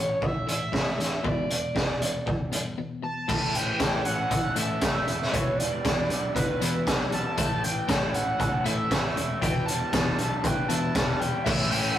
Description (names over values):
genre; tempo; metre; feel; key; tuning
indie rock; 118 BPM; 4/4; straight; A mixolydian; A4 = 440 Hz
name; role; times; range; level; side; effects
overdriven synth lead; melody; 0.0-12.0 s; B4 to A5; -30 LUFS; right 1 dB; none
twelve-string electric guitar; riff; 0.0-12.0 s; E2 to E4; -32 LUFS; left 3 dB; none
picked electric bass; bass; 0.0-11.9 s; E1 to D2; -36 LUFS; equal; none
raw garage drum kit; drums; 0.2-11.8 s; crash cymbal, hi-hat, kick drum, snare drum; -27 LUFS; equal; none
raw garage guitar; riff; 3.3-12.0 s; A2 to B4; -32 LUFS; right 2 dB; overdrive
phased string machine; sustained chords; 11.8-12.0 s; C#4 to C#6; -40 LUFS; equal; none
room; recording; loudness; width
moderate stone room reverb, RT60 1.3 s; rough rehearsal-room recording, warm saturation; -24 LUFS; side -11 dB against mid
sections
0.0-3.3 A section; 3.3-11.5 B section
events
break 2.8-3.3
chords
0.0 A; 1.2 E7(no3); 3.3 A; 5.3 Em7; 7.4 A; 9.4 Em7; 11.5 A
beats
0.22 0.73 | 1.25 1.76 2.27 2.78 | 3.29 3.81 4.32 4.83 | 5.34 5.85 6.36 6.87 | 7.38 7.89 8.40 8.91 | 9.42 9.93 10.45 10.96 | 11.47 11.98